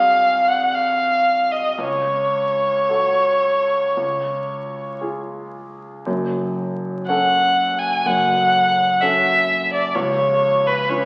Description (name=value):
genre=classical, romantic duo for violin and grand piano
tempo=54-65 BPM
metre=4/4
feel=rubato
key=F# minor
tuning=A4 = 439 Hz
part: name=warm violin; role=melody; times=0.0-11.1 s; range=B4 to G#5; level=-19 LUFS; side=equal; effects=none
part: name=warm concert grand piano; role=accompaniment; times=0.0-11.1 s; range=C#1 to B4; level=-28 LUFS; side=equal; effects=none
room=wet recital hall reverb, RT60 1.4 s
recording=very old 78 rpm record, vinyl crackle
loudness=-19 LUFS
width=mono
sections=0.0-6.0 A section; 6.0-11.1 B section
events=none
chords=0.0 G#7/B#; 1.8 F#m/C#; 4.0 C#; 6.0 F#m; 9.9 C#7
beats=0.73 | 1.78 2.89 3.96 5.00 | 6.05 7.06 8.04 9.01 | 9.94 10.88